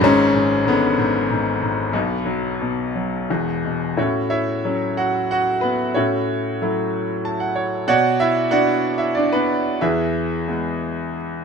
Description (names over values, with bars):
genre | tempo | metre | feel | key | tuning
classical, lyrical solo piano | 84-97 BPM | 3/4 | rubato | A major from 4.0 s | A4 = 441 Hz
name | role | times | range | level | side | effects
bright grand piano | solo | 0.0-11.4 s | E1 to A5 | -18 LUFS | equal | none
room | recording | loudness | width
light reverb | close, detailed microphones | -18 LUFS | side -6 dB against mid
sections
0.0-4.0 A section; 4.0-11.4 B section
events
grand piano fill 6.9-7.9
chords
0.0 G#dim; 1.9 B5; 3.3 E5; 4.0 A6; 6.0 F#m7/A; 7.9 Bmadd9; 9.8 E